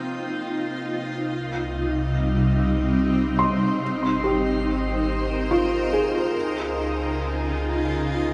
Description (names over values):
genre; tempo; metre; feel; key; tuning
ambient; 71 BPM; 3/4; straight; C phrygian; A4 = 439 Hz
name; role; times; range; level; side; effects
granular cloud pad; sustained chords; 0.0-8.3 s; C3 to C5; -26 LUFS; equal; built-in reverb
felt-muted upright piano; arpeggios; 0.0-8.3 s; F4 to C6; -29 LUFS; equal; delay
organ-like drone; drone; 0.0-1.4 s; C3 to Bb3; -42 LUFS; equal; ensemble chorus, built-in reverb
round analog bass; bass; 1.3-8.3 s; Ab1 to Db2; -32 LUFS; equal; none
room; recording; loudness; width
wet shimmer reverb, RT60 8.2 s; nothing above 10.9 kHz; -24 LUFS; mono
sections
0.0-1.3 A section; 1.3-8.3 B section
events
fade-out on analog synth bass 1.3-8.3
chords
0.0 Cm7; 1.3 Cm; 3.8 Abmaj7; 6.4 Dbmaj7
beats
0.44 | 1.28 2.13 2.97 | 3.82 4.66 5.51 | 6.35 7.20 8.04